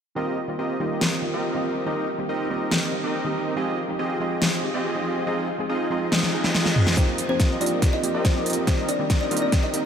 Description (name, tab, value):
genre	future bass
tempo	141 BPM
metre	4/4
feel	half-time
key	Eb major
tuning	A4 = 440 Hz
part	soft round pluck	accompaniment	0.2-9.9 s	Eb3 to Ab4	-30 LUFS	right 2 dB	chorus, sidechain pumping, tape echo
part	big bright polysynth	riff	0.2-9.8 s	C4 to Eb5	-26 LUFS	right 1 dB	sidechain pumping, tape echo
part	big-room dance drum kit	drums	1.0-9.8 s	hi-hat, snare drum, toms	-26 LUFS	equal	none
part	reverse cymbal	sound effects	6.3-7.0 s	none	-36 LUFS	left 2 dB	none
part	kalimba	melody	7.0-9.8 s	C4 to Eb5	-27 LUFS	left 4 dB	sidechain pumping, tape echo
part	electronic kick drum	drums	7.0-9.6 s	none	-21 LUFS	equal	none
room	wet cathedral reverb, RT60 5.5 s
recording	dreamy mix soaked in reverb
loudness	-21 LUFS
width	side -8 dB against mid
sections	0.2-7.0 A section; 7.0-9.9 B section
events	drum fill 6.1-7.0, 7.0-9.9; reverse cymbal 6.3-7.0; build-up 7.0-9.9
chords	0.2 Eb69; 3.6 Fm9; 5.3 Ab6; 7.0 Eb69; 8.7 Cm7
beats	| 0.16 0.59 1.01 1.44 | 1.86 2.29 2.72 3.14 | 3.57 3.99 4.42 4.84 | 5.27 5.69 6.12 6.55 | 6.97 7.40 7.82 8.25 | 8.67 9.10 9.52